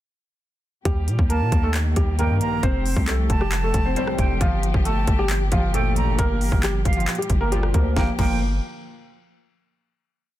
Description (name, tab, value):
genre	hip hop, trap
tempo	135 BPM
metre	4/4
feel	half-time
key	G minor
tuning	A4 = 440 Hz
part	felt-muted upright piano	melody	0.9-8.4 s	F3 to C5	-26 LUFS	left 1 dB	low-pass filter, digital delay
part	dark symphonic string section	sustained chords	0.9-8.2 s	Bb2 to G4	-32 LUFS	equal	none
part	long sustained 808-style bass	bass	0.9-8.6 s	F1 to Bb2	-23 LUFS	equal	none
part	trap drum kit	drums	0.9-8.3 s	crash cymbal, handclaps, hi-hat, kick drum, rim click, snare drum	-23 LUFS	equal	none
part	breathy silver concert flute	second line	1.3-8.4 s	F5 to Bb5	-31 LUFS	right 5 dB	digital delay
part	chorused polysynth	stabs	2.2-8.4 s	Bb1 to G3	-30 LUFS	left 1 dB	phaser, digital delay
room	small room ambience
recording	dense, heavily limited modern master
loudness	-19 LUFS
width	side -14 dB against mid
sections	0.9-8.0 hook; 8.0-9.7 final chord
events	none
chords	0.9 Eb; 2.6 Fadd9; 4.4 Gm7